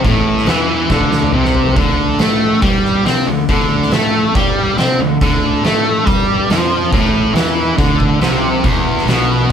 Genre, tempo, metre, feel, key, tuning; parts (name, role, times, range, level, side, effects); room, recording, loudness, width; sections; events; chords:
blues rock power trio and southern rock; 140 BPM; 4/4; straight; A4 = 436 Hz
fuzz guitar; riff; 0.0-9.5 s; E2 to C4; -14 LUFS; equal; distortion
fuzz fingered electric bass; bass; 0.0-9.5 s; E1 to C3; -22 LUFS; equal; overdrive
oversized low-tuned drum kit; drums; 0.0-9.2 s; hi-hat, kick drum, snare drum, toms; -17 LUFS; equal
moderate studio ambience, RT60 0.5 s; band playing live in one room; -12 LUFS; side -8 dB against mid
0.0-9.5 A section
drum fill 0.9-1.8
0.0 A5; 1.8 D5; 6.9 A5; 8.6 E5